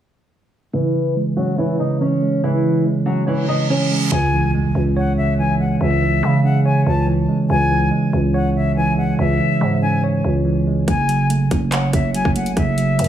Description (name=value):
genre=hip hop, trap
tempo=142 BPM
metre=4/4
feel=half-time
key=C# minor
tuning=A4 = 440 Hz
part: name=flamenco guitar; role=melody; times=0.7-4.1 s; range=E3 to D#5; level=-20 LUFS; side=left 1 dB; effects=low-pass filter
part: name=mellow tine electric piano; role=accompaniment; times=0.7-13.1 s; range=C#3 to C#5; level=-18 LUFS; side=right 2 dB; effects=low-pass filter
part: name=reverse cymbal and impact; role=sound effects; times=3.4-5.8 s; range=none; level=-27 LUFS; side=right 2 dB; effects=none
part: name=silver concert flute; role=second line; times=4.1-13.1 s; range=E5 to A5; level=-23 LUFS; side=left 5 dB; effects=digital delay
part: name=growling 808-style bass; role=bass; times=4.1-13.1 s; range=F#1 to C#3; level=-21 LUFS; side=equal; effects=none
part: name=trap drum kit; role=drums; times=10.9-13.1 s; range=handclaps, hi-hat, kick drum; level=-22 LUFS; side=equal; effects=none
room=light reverb, digital ambience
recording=small room ambience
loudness=-15 LUFS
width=side -10 dB against mid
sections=0.7-4.1 A section; 4.1-13.1 B section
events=filter sweep 0.7-4.1; reverse cymbal 3.4-4.1; impact 4.1-5.8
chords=0.7 C#m; 10.9 F#m